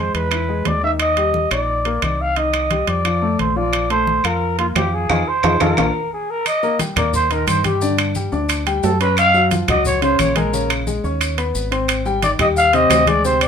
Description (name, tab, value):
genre	Afro-Cuban jazz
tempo	176 BPM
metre	4/4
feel	straight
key	Bb major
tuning	A4 = 440 Hz
part	growling trumpet	melody	0.0-13.5 s	F4 to F5	-18 LUFS	equal	none
part	warm grand piano	accompaniment	0.0-13.5 s	C3 to D6	-22 LUFS	left 3 dB	none
part	deep dub fingered electric bass	bass	0.0-13.5 s	Ab1 to G2	-23 LUFS	right 1 dB	none
part	congas	percussion	0.1-13.5 s	none	-27 LUFS	left 2 dB	none
part	timbales	percussion	0.1-13.5 s	none	-23 LUFS	right 7 dB	none
part	claves	percussion	0.3-13.5 s	none	-28 LUFS	left 2 dB	none
part	maracas	percussion	6.5-13.5 s	none	-31 LUFS	left 4 dB	none
room	moderate club reverb, RT60 0.7 s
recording	minimal, uncompressed stereo recording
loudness	-15 LUFS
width	side -7 dB against mid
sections	0.0-6.5 A section; 6.5-13.5 B section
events	band accent 5.1-6.5; drum fill 5.9-6.5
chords	0.3 E; 1.0 Ebmaj7; 2.4 Cm; 3.0 Bb5; 5.1 Fm7; 5.8 Bb; 6.5 Eb; 7.8 G5; 9.2 Gbmaj9; 10.5 Bbm7; 11.2 Abmadd11; 11.9 Abmaj7